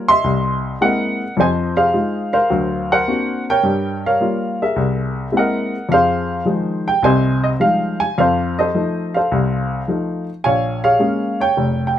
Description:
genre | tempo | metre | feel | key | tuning
solo jazz | 106 BPM | 4/4 | swing 69% on 8ths | F minor | A4 = 440 Hz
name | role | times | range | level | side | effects
warm baby grand piano | solo | 0.0-12.0 s | F1 to C6 | -15 LUFS | equal | none
room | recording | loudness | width
light reverb | minimal, uncompressed stereo recording | -15 LUFS | side -10 dB against mid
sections
0.0-5.9 A section; 5.9-12.0 B section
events
none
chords
0.2 C7alt; 1.4 Fm7; 2.5 Daug7; 3.6 Gm7b5; 4.8 C7alt; 5.9 Fm9; 8.2 F7; 10.4 Bbm7

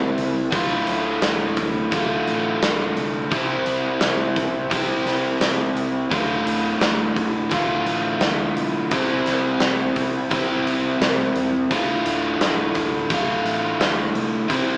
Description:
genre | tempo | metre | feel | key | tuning
classic rock | 86 BPM | 4/4 | straight | D minor | A4 = 440 Hz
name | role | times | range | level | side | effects
overdriven electric guitar | riff | 0.0-14.8 s | D2 to C5 | -20 LUFS | equal | none
hollow-body short-scale fingered electric bass | bass | 0.0-14.8 s | D1 to C#2 | -35 LUFS | equal | none
big rock drum kit | drums | 0.2-14.7 s | hi-hat, kick drum, snare drum | -24 LUFS | equal | none
room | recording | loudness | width
moderate large studio reverb, RT60 1.1 s | band playing live in one room, small speaker sound | -18 LUFS | side -33 dB against mid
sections
0.0-14.8 A section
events
none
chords
0.0 C; 0.5 Dm; 3.3 C; 6.1 Dm; 8.9 C; 11.7 Dm

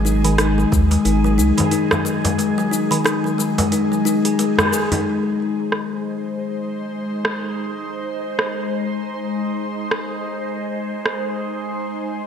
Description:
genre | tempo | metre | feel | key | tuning
organic downtempo | 90 BPM | 4/4 | swing 59% on 16ths | G# major | A4 = 441 Hz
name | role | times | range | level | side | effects
ethereal airy pad | sustained chords | 0.0-12.3 s | G#3 to B#4 | -25 LUFS | equal | ensemble chorus, built-in reverb, phaser, vintage 12-bit sampler grit, sidechain pumping
kalimba | arpeggios | 0.0-5.0 s | D#3 to G#4 | -20 LUFS | left 3 dB | ping-pong delay
round analog bass | bass | 0.0-1.5 s | G#1 to D#2 | -18 LUFS | right 1 dB | sidechain pumping
afro-pop drum kit | drums | 0.1-11.2 s | cabasa, hi-hat, rim click | -22 LUFS | right 1 dB | overdrive, low-pass filter on hats, low-pass filter on perc, low-pass filter on snare
electronic kick drum | drums | 0.7-0.9 s | none | -19 LUFS | right 1 dB | overdrive
frame drum | percussion | 1.6-5.0 s | none | -26 LUFS | equal | none
room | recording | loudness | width
wet plate reverb, RT60 2.0 s | bright 1980s-style digital production | -18 LUFS | side -8 dB against mid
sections
0.0-5.1 A section; 5.1-12.3 B section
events
band accent 4.6-4.9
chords
0.0 G#5; 5.1 G#

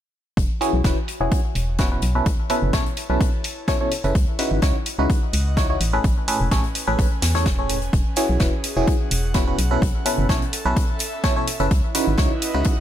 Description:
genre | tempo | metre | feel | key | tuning
piano house | 127 BPM | 4/4 | swing 53% on 16ths | E major | A4 = 439 Hz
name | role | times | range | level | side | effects
organ-like FM bass | bass | 0.4-12.6 s | E1 to E2 | -22 LUFS | equal | tube saturation, sidechain pumping
big rock drum kit | drums | 0.4-12.8 s | hi-hat, snare drum | -32 LUFS | left 3 dB | high-pass filter on hats, studio reverb, high-pass filter on snare, high-pass filter on room
electronic kick drum | drums | 0.4-12.8 s | none | -21 LUFS | equal | overdrive, studio reverb
airy breathy pad | texture | 0.4-12.8 s | C#4 to A5 | -34 LUFS | right 2 dB | chorus, sidechain pumping
barking FM electric piano | riff | 0.6-12.7 s | A2 to C#5 | -24 LUFS | equal | chorus, phaser, tremolo, sidechain pumping, low-pass filter, ping-pong delay
electronic hi-hat | drums | 0.6-12.5 s | none | -27 LUFS | right 1 dB | low-pass filter on hats, studio reverb
room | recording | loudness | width
small room ambience | none | -18 LUFS | side -11 dB against mid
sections
0.4-12.8 A section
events
fade-in on analog synth pad 0.4-12.8; filter sweep on FM bass 0.4-12.8; filter sweep on FM electric piano 0.4-12.8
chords
0.4 E69; 2.0 B9sus4; 4.2 C#m11; 5.8 Amaj9; 7.9 E69; 9.6 B9sus4; 11.7 C#m11

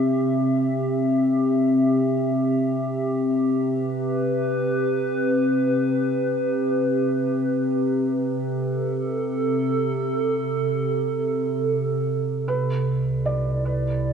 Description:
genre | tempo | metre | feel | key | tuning
ambient | free time | none | none | C major | A4 = 445 Hz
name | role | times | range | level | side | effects
warbly tape-like pad | sustained chords | 0.0-14.1 s | C3 to E5 | -20 LUFS | equal | chorus, built-in reverb
felt-muted upright piano | arpeggios | 12.5-14.1 s | B4 to D5 | -29 LUFS | right 3 dB | dub echo
warm sub bass | bass | 12.5-14.1 s | C2 | -36 LUFS | right 1 dB | none
room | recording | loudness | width
wet plate reverb, RT60 2.6 s | echo-heavy mix, nothing above 11.0 kHz | -20 LUFS | side -7 dB against mid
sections
0.0-12.5 A section; 12.5-14.1 B section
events
none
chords
0.0 C; 3.1 G/C; 12.5 Cmaj9

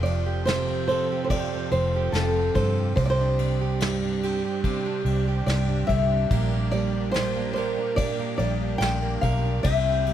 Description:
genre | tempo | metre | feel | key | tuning
acoustic folk-pop ballad | 72 BPM | 4/4 | straight | unclear | A4 = 440 Hz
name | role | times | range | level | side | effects
flamenco guitar | melody | 0.0-10.1 s | A4 to G5 | -27 LUFS | left 1 dB | none
fingerpicked plugged-in steel-string acoustic guitar | accompaniment | 0.0-10.1 s | F2 to Bb4 | -28 LUFS | right 6 dB | none
lush unison pad | sustained chords | 0.0-10.1 s | F3 to C5 | -36 LUFS | left 2 dB | chorus
vintage muted fingered electric bass | bass | 0.0-10.1 s | F1 to G2 | -26 LUFS | left 1 dB | none
vintage brush drum kit | drums | 0.1-10.1 s | kick drum, ride cymbal, snare drum | -31 LUFS | left 1 dB | none
room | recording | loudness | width
little or no reverb | close, detailed microphones | -22 LUFS | side -10 dB against mid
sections
0.0-10.1 A section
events
none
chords
0.0 Fadd9; 3.0 Csus2; 6.3 Gm/Bb

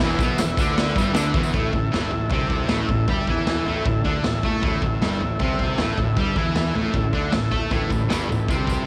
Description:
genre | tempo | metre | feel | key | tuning
garage rock duo or trio | 155 BPM | 4/4 | straight | unclear | A4 = 441 Hz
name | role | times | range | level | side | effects
overdriven combo organ | sustained chords | 0.0-8.9 s | E4 to E5 | -32 LUFS | equal | subtle chorus, cassette tape
thick fuzz guitar | riff | 0.0-8.9 s | E2 to A4 | -26 LUFS | equal | distortion, cassette tape
fuzz fingered electric bass | bass | 0.0-8.8 s | E1 to A2 | -31 LUFS | equal | overdrive
tambourine | percussion | 0.0-1.5, 7.7-8.8 s | none | -42 LUFS | equal | none
raw garage drum kit | drums | 0.2-8.8 s | crash cymbal, kick drum, snare drum, toms | -26 LUFS | equal | cassette tape
room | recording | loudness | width
light reverb | home recording on cassette | -22 LUFS | mono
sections
0.0-1.5 A section; 1.5-8.9 B section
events
none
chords
0.0 E5; 1.5 A5

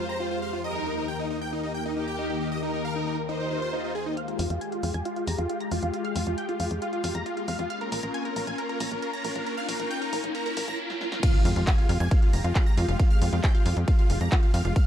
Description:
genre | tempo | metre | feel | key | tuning
uplifting trance | 136 BPM | 4/4 | straight | F minor | A4 = 440 Hz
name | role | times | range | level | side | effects
big supersaw lead | melody | 0.0-14.8 s | Eb4 to Bb5 | -32 LUFS | equal | sidechain pumping, low-pass filter, dub echo
warm studio violin section | second line | 0.0-4.1 s | G4 to C5 | -35 LUFS | equal | dub echo
analog string pad | sustained chords | 0.0-14.9 s | Eb2 to C5 | -33 LUFS | left 3 dB | ensemble chorus, sidechain pumping
swell, riser and impact | sound effects | 3.5-13.0 s | none | -36 LUFS | equal | none
wide unison pluck | second line | 4.2-14.8 s | F5 to Bb6 | -38 LUFS | right 1 dB | phaser, sidechain pumping, dub echo
punchy analog drum machine | drums | 4.2-14.8 s | crash cymbal, handclaps, hi-hat, ride cymbal, snare drum | -35 LUFS | equal | low-pass filter on hats, low-pass filter on snare, low-pass filter on cymbals
tight sequencer bass | bass | 4.4-14.7 s | F1 to F2 | -28 LUFS | equal | sidechain pumping
electronic kick drum | drums | 11.2-14.8 s | none | -20 LUFS | equal | none
room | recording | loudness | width
digital ambience | dark, warm production, high-pass filter | -24 LUFS | side -10 dB against mid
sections
0.0-4.2 A section; 4.2-11.2 B section; 11.2-14.9 C section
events
swell 3.5-4.2; build-up 4.2-11.2; riser 4.2-11.2; filter sweep on supersaw synth 4.2-11.2; filter sweep on synth pluck 4.2-11.2; filter sweep 4.2-11.2; drum fill 10.9-11.2; drop 11.2-14.9; impact 11.2-13.0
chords
0.0 Fmadd9; 0.6 Eb; 4.2 Fmadd9; 7.7 Bbm; 11.2 Fmadd9

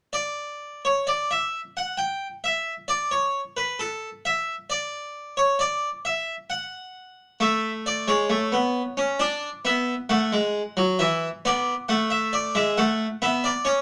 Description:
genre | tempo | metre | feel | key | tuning
classical, baroque-style 3-part fugue for harpsichord | 66 BPM | 4/4 | straight | unclear | A4 = 440 Hz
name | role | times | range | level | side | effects
harpsichord | solo | 0.1-13.8 s | E3 to G5 | -25 LUFS | equal | none
room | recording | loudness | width
wet small room reverb, RT60 0.6 s | none | -25 LUFS | mono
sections
0.1-13.8 A section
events
none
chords
0.1 N.C.; 7.4 A; 9.2 Bm; 11.0 E7; 12.8 A

